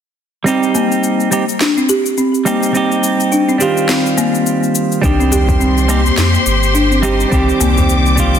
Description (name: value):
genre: organic downtempo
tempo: 105 BPM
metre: 4/4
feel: swing 58% on 16ths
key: C minor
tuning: A4 = 440 Hz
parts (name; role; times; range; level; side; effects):
- clean electric guitar; accompaniment; 0.4-8.4 s; Eb3 to G4; -16 LUFS; right 3 dB; sidechain pumping, digital delay
- folk marimba with soft mallets; arpeggios; 0.5-8.2 s; Bb3 to G4; -16 LUFS; left 1 dB; low-pass filter, digital delay
- electronic cabasa and snare drum; drums; 0.5-8.4 s; none; -21 LUFS; left 3 dB; studio reverb
- clear studio string section; sustained chords; 5.0-8.4 s; G4 to D6; -18 LUFS; left 1 dB; sidechain pumping
- warm sub bass; bass; 5.0-8.4 s; G1 to F2; -15 LUFS; equal; tube saturation, sidechain pumping
- electronic kick drum; drums; 5.0-8.3 s; none; -18 LUFS; equal; studio reverb
- djembe; percussion; 5.3-8.4 s; none; -23 LUFS; right 1 dB; none
room: moderate lush hall reverb, RT60 1.8 s, small room ambience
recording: dense, heavily limited modern master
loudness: -11 LUFS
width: side -8 dB against mid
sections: 0.5-8.4 A section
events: none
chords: 0.5 Cm